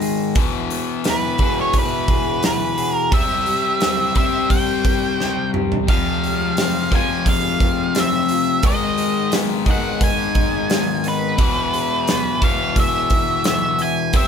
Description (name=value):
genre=quiet-loud alternative rock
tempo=87 BPM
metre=4/4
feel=straight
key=unclear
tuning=A4 = 438 Hz
part: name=electric guitar through a small old amp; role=arpeggios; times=0.0-14.3 s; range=Ab2 to Ab4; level=-27 LUFS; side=right 2 dB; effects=none
part: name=cranked stack guitar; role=riff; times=0.0-14.3 s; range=E2 to C4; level=-22 LUFS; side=left 8 dB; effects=overdrive
part: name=big rock drum kit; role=drums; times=0.0-14.3 s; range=hi-hat, kick drum, snare drum, toms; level=-20 LUFS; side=right 1 dB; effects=none
part: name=octave-fuzz lead guitar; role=melody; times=1.1-14.3 s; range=B4 to Ab5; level=-21 LUFS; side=right 2 dB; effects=distortion
room=light reverb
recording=band playing live in one room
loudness=-16 LUFS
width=side -7 dB against mid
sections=0.0-14.3 A section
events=drum fill 5.2-5.9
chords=0.4 E; 3.1 C; 5.9 Fm; 8.6 Abm; 11.4 E